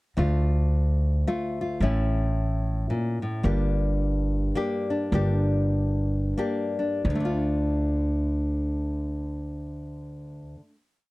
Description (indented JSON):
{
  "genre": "acoustic folk duo or small band",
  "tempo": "84-110 BPM",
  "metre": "3/4",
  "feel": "swing 62% on 8ths",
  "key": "D harmonic minor",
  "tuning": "A4 = 440 Hz",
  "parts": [
    { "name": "nylon-string guitar", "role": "accompaniment", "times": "0.2-10.8 s", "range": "D2 to G4", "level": "-27 LUFS", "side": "left 1 dB", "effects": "none" },
    { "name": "upright bass", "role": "bass", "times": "0.2-10.4 s", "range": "G1 to D2", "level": "-25 LUFS", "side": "equal", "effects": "none" }
  ],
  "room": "little or no reverb",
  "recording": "dark, warm production",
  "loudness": "-23 LUFS",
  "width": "side -20 dB against mid",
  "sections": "0.2-7.0 interlude; 7.0-11.1 final chord",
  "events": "slowing down 3.4-7.0",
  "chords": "0.2 Dm; 1.8 A; 3.4 Gm; 7.0 Dm"
}